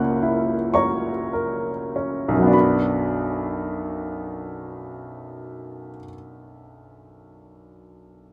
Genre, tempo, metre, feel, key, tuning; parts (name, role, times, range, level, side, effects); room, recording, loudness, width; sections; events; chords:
classical, romantic nocturne for solo piano; 31-39 BPM (dotted quarters); 12/8; rubato; B minor; A4 = 440 Hz
clear upright piano; solo; 0.0-8.3 s; B1 to F#6; -24 LUFS; equal
light reverb; -23 LUFS; mono
0.0-2.5 A section; 2.5-8.3 B section
slowing down 0.0-2.5
0.0 F#7; 2.5 Bm